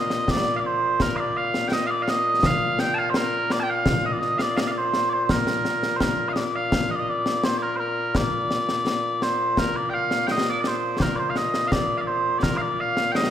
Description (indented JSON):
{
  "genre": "scottish traditional, Scottish pipe music",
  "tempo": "84 BPM",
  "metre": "2/4",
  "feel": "straight",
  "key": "Bb major",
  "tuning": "A4 = 440 Hz",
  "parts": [
    { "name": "mellow small bagpipes", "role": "melody", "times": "0.0-13.3 s", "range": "Bb2 to A5", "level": "-22 LUFS", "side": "equal", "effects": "none" },
    { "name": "concert snare drum and concert bass drum", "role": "drums", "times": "0.1-13.3 s", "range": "none", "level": "-26 LUFS", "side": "left 1 dB", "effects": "none" }
  ],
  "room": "moderate scoring stage reverb, RT60 1.9 s",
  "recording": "recorded in a church or concert hall",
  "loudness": "-21 LUFS",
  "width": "side -10 dB against mid",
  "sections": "0.0-6.7 A section; 6.7-13.3 A section",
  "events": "none",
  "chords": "none"
}